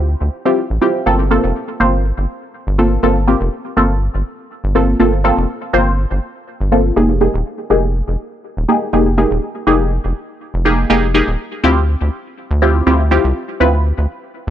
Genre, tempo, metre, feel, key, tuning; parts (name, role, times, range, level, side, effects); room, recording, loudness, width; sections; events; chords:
deep house; 122 BPM; 4/4; swing 54% on 16ths; G minor; A4 = 440 Hz
rubbery square bass; bass; 0.0-14.5 s; Eb1 to D2; -16 LUFS; equal; tube saturation
filtered dub chord stab; stabs; 0.5-13.8 s; Bb3 to C5; -15 LUFS; equal; phaser, cassette tape, analog delay
little or no reverb; dry, gritty hardware recording; -13 LUFS; side -10 dB against mid
0.0-1.1 A section; 1.1-14.5 B section
drop 1.1-14.5
0.0 Dm11; 1.1 Gm11; 7.0 Fm11; 11.6 Dm11